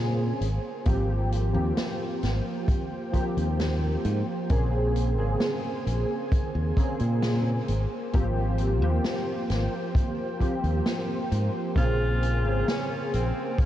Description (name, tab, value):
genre	vaporwave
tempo	66 BPM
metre	4/4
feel	straight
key	Ab major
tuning	A4 = 441 Hz
part	warbly lo-fi synth keys	accompaniment	0.0-13.7 s	Db3 to Ab4	-30 LUFS	equal	ensemble chorus, analog delay
part	soft string machine	sustained chords	0.0-13.7 s	Bb3 to Ab5	-35 LUFS	equal	ensemble chorus, vintage 12-bit sampler grit
part	modern bright fingered electric bass	bass	0.0-13.6 s	Ab1 to Bb2	-26 LUFS	equal	tube saturation
part	swinging big-band drum kit	drums	0.4-13.7 s	hi-hat, snare drum	-35 LUFS	equal	none
part	kick drum	drums	0.9-13.7 s	none	-25 LUFS	equal	none
part	breathy tenor saxophone	melody	11.8-13.7 s	Bb3 to F4	-32 LUFS	equal	vintage 12-bit sampler grit, tape echo
room	moderate huge ambient reverb, RT60 8.0 s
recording	dreamy mix soaked in reverb, cassette tape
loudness	-24 LUFS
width	side -12 dB against mid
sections	0.0-13.7 A section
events	none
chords	0.4 Abmaj13; 4.5 Bbm9; 7.7 Abmaj13; 11.8 Bbm9